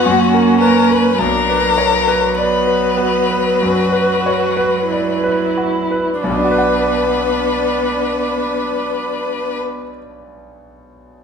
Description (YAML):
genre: classical, slow romantic movement for piano quartet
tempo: 44-55 BPM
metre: 4/4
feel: rubato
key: B minor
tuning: A4 = 441 Hz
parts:
  - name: warm violin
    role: melody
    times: 0.0-9.6 s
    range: F#4 to B4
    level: -18 LUFS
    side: left 6 dB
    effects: none
  - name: warm cello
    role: second line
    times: 0.0-9.6 s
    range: F#3 to B3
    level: -20 LUFS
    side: right 5 dB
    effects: none
  - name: bright concert grand piano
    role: accompaniment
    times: 0.0-11.2 s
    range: B1 to F#5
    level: -19 LUFS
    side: equal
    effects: none
  - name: rich viola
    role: accompaniment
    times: 0.0-9.6 s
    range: B3 to F#4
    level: -21 LUFS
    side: right 2 dB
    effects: none
room: wet recital hall reverb, RT60 1.6 s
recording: minimal, uncompressed stereo recording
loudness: -13 LUFS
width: side -6 dB against mid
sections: 0.0-6.2 A section; 6.2-11.2 B section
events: slowing down 0.0-6.2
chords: 0.0 F#; 1.2 Bm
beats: 0.04 | 1.19 2.36 3.60 4.88 | 6.20 7.44 8.68 9.93